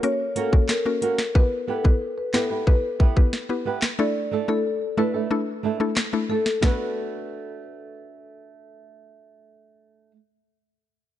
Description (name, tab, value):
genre	dancehall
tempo	91 BPM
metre	4/4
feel	straight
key	B minor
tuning	A4 = 439 Hz
part	marimba with medium mallets	melody	0.0-8.6 s	A4 to D5	-27 LUFS	left 2 dB	tape echo
part	mallet-like synth pluck	accompaniment	0.0-9.8 s	A3 to B4	-27 LUFS	left 3 dB	chorus, sidechain pumping
part	island pop drum kit	drums	0.0-6.8 s	handclaps, hi-hat, kick drum, rim click, snare drum	-20 LUFS	equal	none
part	flamenco guitar	arpeggios	0.4-10.2 s	A3 to B4	-29 LUFS	right 7 dB	none
room	light reverb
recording	dark, warm production, nothing above 10.9 kHz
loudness	-20 LUFS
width	side -12 dB against mid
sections	0.0-6.6 A section; 6.6-9.3 B section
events	none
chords	0.0 F#; 1.4 Em; 4.0 Dsus2; 6.6 Bm7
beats	0.03 0.69 | 1.35 2.01 2.67 3.33 | 3.99 4.65 5.31 5.97 | 6.63 7.29 7.94 8.60